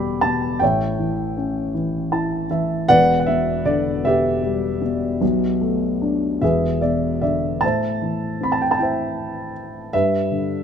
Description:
classical, lyrical solo piano; 52 BPM (dotted quarters); 6/8; rubato; E minor, A minor from 7.6 s; A4 = 440 Hz
dark concert grand piano; solo; 0.0-10.6 s; E1 to E6; -18 LUFS; equal
light reverb; close, detailed microphones; -18 LUFS; side -8 dB against mid
0.0-7.6 A section; 7.6-10.6 B section
grand piano fill 1.7-2.9, 6.4-7.6
0.0 Em7; 0.6 A7; 2.9 Em7; 5.2 Bm7; 6.4 E7; 7.6 Am7; 9.9 Em7/G

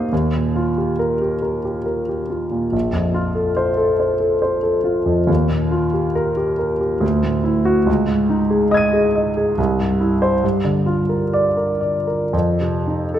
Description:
classical, impressionist solo piano; 69 BPM; 3/4; rubato; A4 = 440 Hz
clear concert grand piano; solo; 0.0-13.2 s; Bb1 to Eb7; -16 LUFS; equal
moderate concert hall reverb, RT60 2.0 s; -16 LUFS; side -10 dB against mid
0.0-13.2 A section
0.1 Ebadd9; 2.7 Bbsus2; 5.3 Ebadd9; 7.0 Dadd9; 7.9 Dbsus2; 9.6 C; 10.4 Gm7; 12.3 F7(no3)

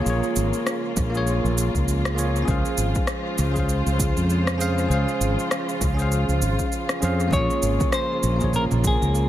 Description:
sunset chillout; 99 BPM; 4/4; swing 58% on 16ths; Bb minor; A4 = 441 Hz
bell-like tine electric piano; accompaniment; 0.0-9.3 s; Bb3 to F5; -26 LUFS; equal; auto-pan, analog delay
muted studio string section; sustained chords; 0.0-9.3 s; Db3 to C5; -29 LUFS; left 1 dB
mellow fretless electric bass; bass; 0.0-9.3 s; Ab1 to F2; -22 LUFS; equal
electronic shaker and rim click; drums; 0.1-9.3 s; -30 LUFS; equal; dub echo
electronic kick drum; drums; 1.0-9.0 s; -26 LUFS; equal
semi-hollow electric guitar; melody; 7.3-9.3 s; Ab4 to Db5; -25 LUFS; equal; analog delay
congas; percussion; 7.3-9.0 s; -30 LUFS; right 3 dB
light reverb; echo-heavy mix; -20 LUFS; side -12 dB against mid
0.0-9.3 A section
0.0 Bbm7; 2.5 Dbmaj7; 7.3 Bbm7

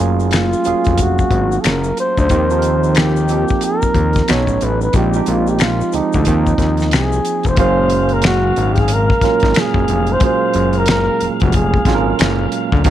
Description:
R&B, neo-soul; 91 BPM; 4/4; swing 61% on 16ths; A4 = 438 Hz
breathy flugelhorn; melody; 0.0-12.2 s; Eb4 to C#5; -18 LUFS; left 1 dB
barky tine electric piano; accompaniment; 0.0-12.9 s; F3 to G5; -20 LUFS; right 10 dB; overdrive
fat analog bass; bass; 0.0-12.9 s; F1 to Eb2; -17 LUFS; left 1 dB
tube shaker and finger snaps; percussion; 0.0-7.6 s; -29 LUFS; left 16 dB
damped 70s drum kit; drums; 0.3-12.9 s; finger snaps, hi-hat, kick drum, snare drum; -17 LUFS; left 1 dB
tonewheel organ; sustained chords; 7.6-12.9 s; Bb2 to F5; -24 LUFS; equal; fast rotary speaker
light reverb, studio ambience; 1960s-style stereo with parts hard left and right; -13 LUFS; side -12 dB against mid
0.0-7.6 A section; 7.6-12.9 B section
0.0 Gbmaj9; 2.3 Eb69; 4.3 B9; 4.9 Bb13sus4; 6.3 Eb69; 7.6 Gbmaj9

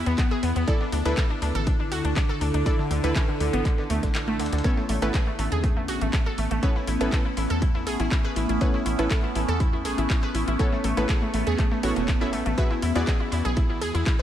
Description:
progressive house; 121 BPM; 4/4; straight; A major; A4 = 440 Hz
evolving wavetable pad; sustained chords; 0.0-14.2 s; D3 to A4; -30 LUFS; equal; phaser, built-in reverb, vintage 12-bit sampler grit, sidechain pumping
wide unison pluck; stabs; 0.0-14.2 s; B3 to E5; -31 LUFS; equal; sidechain pumping, tape echo
tight sequencer bass; bass; 0.0-14.0 s; E1 to E2; -27 LUFS; equal; sidechain pumping
glassy wavetable pluck; arpeggios; 0.1-14.2 s; D3 to B4; -30 LUFS; equal; chorus, sidechain pumping, tape echo
dusty soul sampler-style drum kit; drums; 0.1-14.2 s; hi-hat, snare drum; -43 LUFS; equal
house drum kit; drums; 0.1-14.2 s; handclaps, hi-hat; -35 LUFS; left 1 dB
electronic kick drum; drums; 0.2-14.2 s; -23 LUFS; equal
moderate lush hall reverb, RT60 1.7 s, digital ambience; dreamy mix soaked in reverb; -22 LUFS; side -11 dB against mid
0.0-14.2 A section
kick drops out 4.1-4.6
0.0 Eadd9; 0.7 Dsus2; 4.6 Aadd9; 12.6 Eadd9

